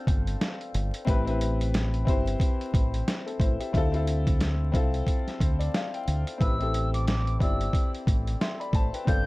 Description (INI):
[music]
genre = hip hop, boom-bap hip-hop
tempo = 90 BPM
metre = 4/4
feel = swing 59% on 16ths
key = A minor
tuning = A4 = 440 Hz
[part]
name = clear upright piano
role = accompaniment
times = 0.0-9.3 s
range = C4 to C6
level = -32 LUFS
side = left 3 dB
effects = high-pass filter, low-pass filter
[part]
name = deep dub fingered electric bass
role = bass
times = 0.1-9.3 s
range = G1 to D2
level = -27 LUFS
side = equal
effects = none
[part]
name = dusty soul sampler-style drum kit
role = drums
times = 0.1-9.3 s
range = hi-hat, kick drum, snare drum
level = -26 LUFS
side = equal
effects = vintage 12-bit sampler grit
[part]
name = hollow concert flute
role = melody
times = 6.4-9.3 s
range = D6 to G6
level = -35 LUFS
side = right 1 dB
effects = high-pass filter, low-pass filter, analog delay
[sound]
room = light reverb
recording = dark, warm production, vinyl crackle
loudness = -24 LUFS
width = side -21 dB against mid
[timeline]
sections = 0.0-9.3 A section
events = upright piano fill 5.1-6.4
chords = 0.0 G7sus4; 1.1 Am7; 3.7 Dm7; 6.4 Am7